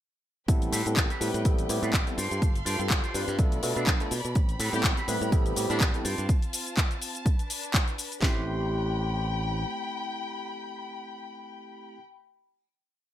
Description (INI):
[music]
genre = filtered disco house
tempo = 124 BPM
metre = 4/4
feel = swing 56% on 16ths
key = A minor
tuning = A4 = 437 Hz
[part]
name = overdriven tine electric piano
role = accompaniment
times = 0.5-12.0 s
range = G3 to B4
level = -34 LUFS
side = equal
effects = phaser, sidechain pumping
[part]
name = dark studio violin section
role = sustained chords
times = 0.5-12.0 s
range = C4 to C6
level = -37 LUFS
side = left 2 dB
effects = vintage 12-bit sampler grit, sidechain pumping
[part]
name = modern bright fingered electric bass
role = bass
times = 0.5-9.6 s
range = G1 to B2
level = -32 LUFS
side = equal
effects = tube saturation, sidechain pumping
[part]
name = house drum kit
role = drums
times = 0.5-8.3 s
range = handclaps, kick drum, snare drum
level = -25 LUFS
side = equal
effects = overdrive
[part]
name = house drum kit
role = drums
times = 0.5-8.2 s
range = cabasa, handclaps, hi-hat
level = -30 LUFS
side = left 1 dB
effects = overdrive, sidechain pumping on hats, sidechain pumping on perc, gated reverb
[part]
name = electric guitar with an envelope filter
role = riff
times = 0.7-12.0 s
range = C4 to C5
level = -36 LUFS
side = right 2 dB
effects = vintage 12-bit sampler grit, sidechain pumping
[part]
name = brilliant horn section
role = melody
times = 4.7-5.9 s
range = D4 to G4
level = -36 LUFS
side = left 3 dB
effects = none
[sound]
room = light reverb, digital ambience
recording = bright 1980s-style digital production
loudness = -25 LUFS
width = side -12 dB against mid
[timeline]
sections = 0.5-8.2 drop; 8.2-12.1 final chord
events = drop 0.5-8.2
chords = 0.5 Am9; 2.2 G9sus4; 3.4 Bm7b5; 4.4 Am9; 6.0 G9sus4; 7.3 Bm7/D; 8.2 Am9